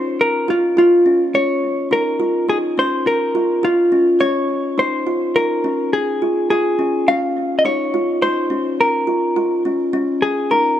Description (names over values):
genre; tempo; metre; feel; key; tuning
progressive instrumental, progressive; 105 BPM; 5/4; straight; Bb minor; A4 = 439 Hz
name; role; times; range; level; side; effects
vintage hollow-body jazz guitar; melody; 0.0-10.8 s; F4 to F5; -17 LUFS; left 1 dB; none
kalimba; arpeggios; 0.0-10.8 s; Db4 to F4; -19 LUFS; equal; digital delay
room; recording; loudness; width
moderate plate reverb, RT60 3.2 s; dark, warm production; -15 LUFS; side -11 dB against mid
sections
0.0-10.8 A section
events
none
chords
0.0 Bbmadd11